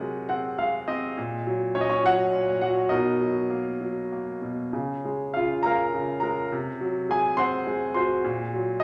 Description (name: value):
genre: classical, lyrical solo piano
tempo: 96-107 BPM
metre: 3/4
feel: rubato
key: Db major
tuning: A4 = 439 Hz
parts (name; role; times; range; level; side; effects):
- clear concert grand piano; solo; 0.0-8.8 s; Bb2 to C6; -26 LUFS; equal; none
room: wet recital hall reverb, RT60 1.7 s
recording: none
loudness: -26 LUFS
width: mono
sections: 0.0-8.8 A section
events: grand piano fill 0.0-1.2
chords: 0.0 Ab9/C; 1.2 Gb6/Bb; 2.9 Cbmaj7; 4.7 Db6; 6.5 Ab7/C; 8.2 Ebm/Bb (rootless)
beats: 0.00 0.59 | 1.17 1.75 2.32 | 2.91 3.50 4.12 | 4.74 5.35 5.94 | 6.52 7.09 7.66 | 8.24 8.83